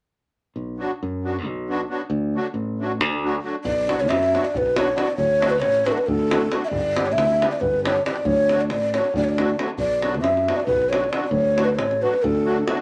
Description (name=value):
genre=balkan folk, Balkan wedding band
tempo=273 BPM (eighths)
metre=7/8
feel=straight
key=B minor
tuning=A4 = 440 Hz
part: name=modern bright fingered electric bass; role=bass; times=0.6-12.6 s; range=G1 to F#2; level=-28 LUFS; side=equal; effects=none
part: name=musette accordion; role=accompaniment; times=0.8-12.8 s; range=F#3 to G4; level=-29 LUFS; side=equal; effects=none
part: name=breathy mellow ney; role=melody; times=3.6-12.7 s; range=A4 to E5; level=-23 LUFS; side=equal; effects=none
part: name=davul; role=percussion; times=3.6-12.8 s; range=none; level=-31 LUFS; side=equal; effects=none
room=moderate small room reverb, RT60 0.5 s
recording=none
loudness=-22 LUFS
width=mono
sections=0.5-3.6 A section; 3.6-12.8 B section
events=none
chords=0.5 Bm; 2.1 D; 3.6 Bm; 5.2 D; 6.7 G; 8.2 D; 9.8 Bm; 11.3 D